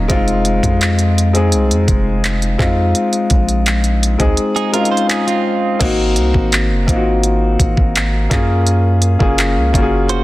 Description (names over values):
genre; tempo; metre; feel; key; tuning
contemporary R&B; 84 BPM; 4/4; straight; unclear; A4 = 440 Hz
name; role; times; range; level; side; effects
warm concert grand piano; accompaniment; 0.0-10.2 s; Gb3 to Ab4; -16 LUFS; left 2 dB; none
long sustained 808-style bass; bass; 0.0-10.2 s; F1 to Gb2; -16 LUFS; equal; none
smooth R&B drum kit; drums; 0.1-10.2 s; crash cymbal, handclaps, hi-hat, kick drum; -17 LUFS; equal; none
direct-recorded clean electric guitar; arpeggios; 4.6-5.8, 10.1-10.2 s; C4 to C5; -20 LUFS; right 8 dB; tape echo
room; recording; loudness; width
little or no reverb; dense, heavily limited modern master; -12 LUFS; side -17 dB against mid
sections
0.0-5.8 A section; 5.8-10.2 B section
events
kick muted 4.4-5.8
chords
0.1 Fm7; 2.6 Bb9sus4; 5.8 Ab7; 8.3 Gbmaj7